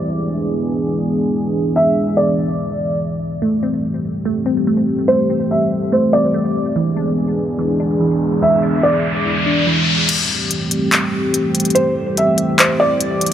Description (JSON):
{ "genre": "hip hop, atmospheric cloud-rap", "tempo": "144 BPM", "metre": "4/4", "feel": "half-time", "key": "A minor", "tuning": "A4 = 438 Hz", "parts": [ { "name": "felt-muted upright piano", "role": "melody", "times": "0.0-13.3 s", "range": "C5 to E5", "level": "-18 LUFS", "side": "right 1 dB", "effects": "low-pass filter, digital delay" }, { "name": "dark analog pad", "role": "sustained chords", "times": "0.0-13.3 s", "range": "E3 to G#4", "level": "-18 LUFS", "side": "equal", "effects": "chorus" }, { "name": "glassy wavetable pluck", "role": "arpeggios", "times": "3.4-10.1 s", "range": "E3 to D4", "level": "-20 LUFS", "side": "equal", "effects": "chorus, low-pass filter, digital delay" }, { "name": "riser", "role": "sound effects", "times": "8.2-10.1 s", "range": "none", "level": "-21 LUFS", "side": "left 1 dB", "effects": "none" }, { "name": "trap drum kit", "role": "drums", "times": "10.1-13.3 s", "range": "crash cymbal, handclaps, hi-hat", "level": "-17 LUFS", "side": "left 2 dB", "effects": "none" } ], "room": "moderate huge ambient reverb, RT60 3.9 s", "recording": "low-pass filter", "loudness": "-14 LUFS", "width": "side -10 dB against mid", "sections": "0.0-10.1 A section; 10.1-13.3 B section", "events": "filter sweep 0.0-10.1; riser 8.2-10.1; kick muted 10.1-13.3", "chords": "0.1 E7; 3.4 Am7; 6.8 E7; 10.1 Am7" }